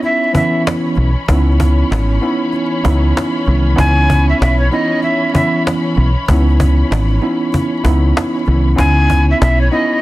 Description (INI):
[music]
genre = hip hop, boom-bap hip-hop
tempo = 96 BPM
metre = 4/4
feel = swing 62% on 16ths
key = C# minor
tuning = A4 = 445 Hz
[part]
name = breathy bright jazz flute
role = melody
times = 0.0-10.0 s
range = C#5 to G#5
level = -17 LUFS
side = equal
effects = high-pass filter, low-pass filter
[part]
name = mellow tine electric piano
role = accompaniment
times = 0.0-10.0 s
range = D#3 to E4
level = -17 LUFS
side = right 1 dB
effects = medium stereo tremolo, high-pass filter, low-pass filter
[part]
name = warm studio string section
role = sustained chords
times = 0.0-10.0 s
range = E3 to B5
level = -24 LUFS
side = left 1 dB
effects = high-pass filter, low-pass filter
[part]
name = cajon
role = drums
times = 0.0-9.8 s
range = none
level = -20 LUFS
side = equal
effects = none
[part]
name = deep dub fingered electric bass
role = bass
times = 1.0-9.7 s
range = G#1 to C#2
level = -12 LUFS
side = equal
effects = none
[sound]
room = studio ambience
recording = dense, heavily limited modern master, vinyl crackle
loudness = -11 LUFS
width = side -17 dB against mid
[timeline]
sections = 0.0-10.0 A section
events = none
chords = 0.0 C#m9